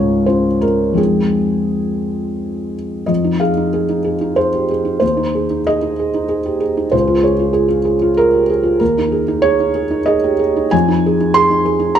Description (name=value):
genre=neoclassical minimalist piano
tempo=81-98 BPM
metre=3/4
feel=rubato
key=F minor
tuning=A4 = 439 Hz
part: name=felt-muted upright piano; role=solo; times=0.0-12.0 s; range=Db2 to C6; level=-13 LUFS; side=right 1 dB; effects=none
room=moderate stone room reverb, RT60 1.2 s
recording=band playing live in one room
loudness=-13 LUFS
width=side -9 dB against mid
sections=0.0-3.1 A section; 3.1-12.0 B section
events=none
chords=0.0 Db6; 1.0 Fm7; 5.0 Abmaj7/Eb; 6.9 Db6; 8.8 Eb7sus4; 10.7 Fm7